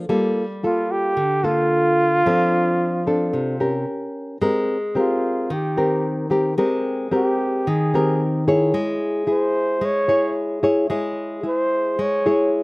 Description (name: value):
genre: bossa nova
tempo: 111 BPM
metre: 4/4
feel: straight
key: Ab major from 4.4 s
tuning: A4 = 440 Hz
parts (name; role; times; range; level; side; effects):
- nylon-string guitar; accompaniment; 0.0-12.6 s; C3 to Db5; -20 LUFS; left 1 dB; none
- mellow flugelhorn; melody; 0.7-12.5 s; F4 to Db5; -21 LUFS; right 1 dB; slapback echo
room: little or no reverb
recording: recorded outdoors, with no room sound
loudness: -18 LUFS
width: side -23 dB against mid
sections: 0.0-4.4 A section; 4.4-12.6 B section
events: flugelhorn solo 4.4-12.6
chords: 0.1 Gm9; 2.2 F6; 3.9 Gdim/Db; 4.4 Abmaj9; 8.7 Dbm/Ab